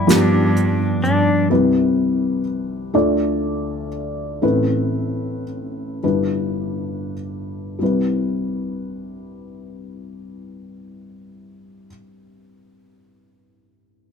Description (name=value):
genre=folk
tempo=32-42 BPM (dotted quarters)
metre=6/8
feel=straight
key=C major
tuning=A4 = 438 Hz
part: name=felt-muted upright piano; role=melody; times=0.0-14.1 s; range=G1 to G5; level=-19 LUFS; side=left 1 dB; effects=none
part: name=pedal steel guitar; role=second line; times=0.0-1.5 s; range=D4 to E4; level=-22 LUFS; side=left 3 dB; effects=none
part: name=warm cello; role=bass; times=0.1-1.4 s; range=G2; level=-21 LUFS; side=right 1 dB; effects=none
part: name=soft brush drum kit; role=drums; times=0.1-1.3 s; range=hi-hat, snare drum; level=-20 LUFS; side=right 2 dB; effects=none
room=moderate studio reverb, RT60 0.9 s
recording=none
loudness=-18 LUFS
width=side -6 dB against mid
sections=0.0-1.5 A section; 1.5-7.8 B section; 7.8-11.6 C section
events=slowing down 1.5-7.8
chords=0.0 G7; 1.5 Cmaj7; 2.9 Dm; 4.4 Amadd9; 6.0 G6; 7.8 Cmaj7